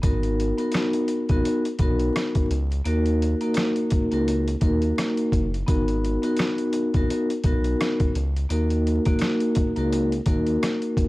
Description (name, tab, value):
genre	hip hop, boom-bap hip-hop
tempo	85 BPM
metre	4/4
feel	swing 59% on 16ths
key	Eb minor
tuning	A4 = 439 Hz
part	vibraphone with soft mallets	accompaniment	0.0-11.1 s	Bb3 to Bb4	-23 LUFS	equal	cassette tape, high-pass filter, low-pass filter
part	smooth synth bass	bass	0.0-11.1 s	Gb1 to Eb2	-25 LUFS	equal	none
part	trip hop sampler-style drum kit	drums	0.0-11.1 s	hi-hat, kick drum, rim click, snare drum	-24 LUFS	equal	overdrive
room	little or no reverb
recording	dry, gritty hardware recording, vinyl crackle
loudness	-20 LUFS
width	side -19 dB against mid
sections	0.0-11.1 A section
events	none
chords	0.0 Abm7; 2.9 Ebm; 5.7 Abm7; 8.5 Ebm